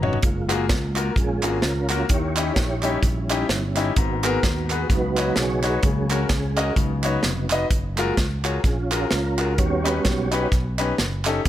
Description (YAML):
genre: uptempo gospel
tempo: 128 BPM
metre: 4/4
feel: swing 58% on 8ths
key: F# major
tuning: A4 = 441 Hz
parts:
  - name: clear grand piano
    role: accompaniment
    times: 0.0-11.5 s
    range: G#2 to A#5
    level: -25 LUFS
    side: left 4 dB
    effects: none
  - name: mellow tonewheel organ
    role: sustained chords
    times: 0.0-11.5 s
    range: F#3 to C#5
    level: -27 LUFS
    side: right 3 dB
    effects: fast rotary speaker, chorus vibrato
  - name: fingered electric bass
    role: bass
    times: 0.0-11.5 s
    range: E#1 to D#2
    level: -26 LUFS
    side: equal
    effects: none
  - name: crisp fusion drum kit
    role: drums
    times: 0.0-11.5 s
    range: hi-hat, kick drum, snare drum, toms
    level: -24 LUFS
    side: equal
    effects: none
  - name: group handclap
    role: percussion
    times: 0.5-11.3 s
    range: none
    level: -30 LUFS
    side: right 4 dB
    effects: none
room: light reverb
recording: none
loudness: -20 LUFS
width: side -12 dB against mid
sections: 0.0-11.5 A section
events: drum fill 0.0; grand piano fill 0.0; tonewheel organ solo 0.0-11.5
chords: 0.2 F#maj9; 2.1 D#7b9; 4.0 G#m9; 4.9 C#9sus4; 5.8 F#/C#; 6.8 C#9sus4; 7.7 F#maj9; 9.6 D#7alt